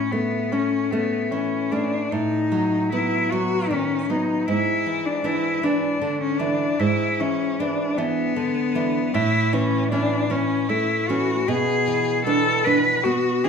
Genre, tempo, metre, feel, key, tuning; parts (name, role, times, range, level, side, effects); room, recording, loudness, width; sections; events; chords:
romantic duo for cello and classical guitar; 51 BPM (dotted quarters); 12/8; rubato; A major; A4 = 440 Hz
clear cello; melody; 0.0-13.5 s; B3 to B4; -22 LUFS; left 4 dB
nylon-string guitar; accompaniment; 0.0-13.5 s; G#2 to D4; -23 LUFS; right 3 dB
moderate recital hall reverb, RT60 1.4 s; minimal, uncompressed stereo recording; -20 LUFS; side -6 dB against mid
0.0-13.5 A section
0.0 A; 2.1 B7/A; 4.5 E7/G#; 9.1 A; 11.5 E7/B